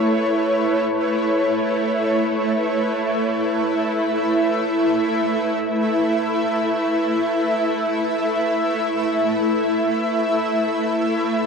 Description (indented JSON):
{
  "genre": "ambient",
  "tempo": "free time",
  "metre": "none",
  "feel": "none",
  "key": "A major",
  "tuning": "A4 = 441 Hz",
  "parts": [
    { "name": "shimmering ambient pad", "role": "solo", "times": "0.0-11.5 s", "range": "A3 to E5", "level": "-18 LUFS", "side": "equal", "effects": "chorus, built-in reverb, ping-pong delay" }
  ],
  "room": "wet huge ambient reverb, RT60 8.4 s",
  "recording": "worn, warbling old tape, cassette tape, warbly pitch drift",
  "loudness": "-18 LUFS",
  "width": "side -5 dB against mid",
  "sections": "0.0-11.5 A section",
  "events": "none",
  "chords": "0.0 A"
}